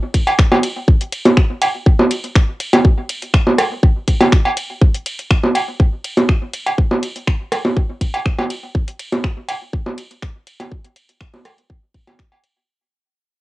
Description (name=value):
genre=techno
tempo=122 BPM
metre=4/4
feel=straight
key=none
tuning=none
part: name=booming analog drum machine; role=drums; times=0.1-12.5 s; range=finger snaps, hi-hat, ride cymbal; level=-24 LUFS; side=equal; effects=cassette tape
part: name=electronic kick drum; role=drums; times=0.1-12.3 s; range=none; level=-14 LUFS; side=equal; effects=cassette tape
part: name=electronic cowbell, bongos and rim click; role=percussion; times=0.3-12.4 s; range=none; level=-15 LUFS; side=right 1 dB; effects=cassette tape
room=light reverb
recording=home recording on cassette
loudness=-14 LUFS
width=side -18 dB against mid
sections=0.0-12.7 A section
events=drop 0.0-12.7; fade-out 4.8-12.7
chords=none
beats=0.39 | 0.88 1.37 1.86 2.35 | 2.85 3.34 3.83 4.32 | 4.81 5.31 5.80 6.29 | 6.78 7.27 7.76 8.26 | 8.75 9.24 9.73 10.22 | 10.72 11.21 11.70 12.19